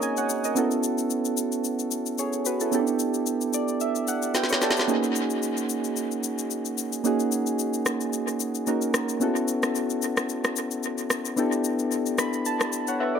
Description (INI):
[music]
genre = amapiano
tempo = 111 BPM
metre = 4/4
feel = swing 55% on 16ths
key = G# phrygian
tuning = A4 = 442 Hz
[part]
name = soft electric-piano-like synth keys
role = accompaniment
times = 0.0-13.2 s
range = A#3 to B5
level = -24 LUFS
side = right 1 dB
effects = chorus
[part]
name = electronic shaker, snare drum and rim click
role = drums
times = 0.0-13.0 s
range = none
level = -29 LUFS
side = left 3 dB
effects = dub echo
[sound]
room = moderate spring reverb, RT60 2.0 s, digital ambience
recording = echo-heavy mix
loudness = -23 LUFS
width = side -7 dB against mid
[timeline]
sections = 0.0-13.2 A section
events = synth keys fill 3.3-4.9, 11.9-13.2; drum fill 4.3-4.9; silent gap 13.0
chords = 0.0 G#9sus4; 0.6 B9sus4; 2.7 A9sus4; 4.9 G#9sus4; 9.2 B9sus4; 11.4 A9sus4